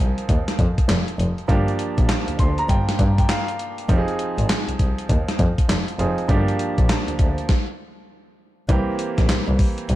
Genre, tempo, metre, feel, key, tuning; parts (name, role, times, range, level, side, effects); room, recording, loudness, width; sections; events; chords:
R&B, new jack swing; 100 BPM; 4/4; swing 63% on 16ths; F dorian; A4 = 441 Hz
clear concert grand piano; accompaniment; 0.0-10.0 s; E3 to C6; -26 LUFS; right 2 dB
rich double bass; bass; 0.0-10.0 s; F1 to G2; -22 LUFS; equal
gated 80s digital drum machine; drums; 0.2-10.0 s; handclaps, hi-hat, kick drum, snare drum; -20 LUFS; equal; gated reverb, gated reverb snare
little or no reverb; dark, warm production; -18 LUFS; side -15 dB against mid
0.0-8.7 A section; 8.7-10.0 B section
grand piano fill 2.1-3.9; stop 7.5-8.7
0.0 Fm7; 1.5 Gm7; 3.9 Fm7; 6.3 Gm7; 7.5 N.C.; 8.7 C7